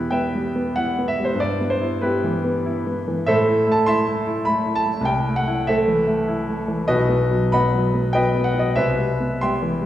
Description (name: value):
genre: classical, romantic character piece for solo piano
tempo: 98 BPM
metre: 3/4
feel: uneven beats, rubato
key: E minor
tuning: A4 = 440 Hz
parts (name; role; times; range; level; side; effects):
- warm grand piano; solo; 0.0-9.9 s; B1 to C6; -18 LUFS; equal; none
room: wet recital hall reverb, RT60 1.8 s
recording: heard from further back in the room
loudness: -18 LUFS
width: side -12 dB against mid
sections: 0.0-9.9 A section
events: none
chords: 0.0 Em; 1.4 Em/G; 3.3 Am; 5.1 Am/C; 6.9 B; 8.8 Cmaj7